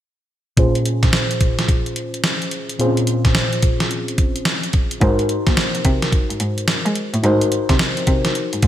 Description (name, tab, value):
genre	R&B, new jack swing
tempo	108 BPM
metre	4/4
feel	swing 64% on 16ths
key	Bb minor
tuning	A4 = 440 Hz
part	mellow FM electric piano	accompaniment	0.6-8.7 s	Bb2 to C5	-21 LUFS	left 1 dB	chorus, low-pass filter
part	crisp 8-bit digital drum machine	drums	0.6-8.7 s	hi-hat, kick drum, snare drum	-18 LUFS	equal	gated reverb
part	rich cello	bass	5.0-8.7 s	Ab2 to Ab3	-22 LUFS	equal	none
room	moderate lush hall reverb, RT60 1.8 s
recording	bright 1980s-style digital production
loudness	-16 LUFS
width	side -12 dB against mid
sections	0.6-8.7 A section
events	filter sweep on FM electric piano 0.6-8.7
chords	0.6 Bbm9; 5.0 Ab7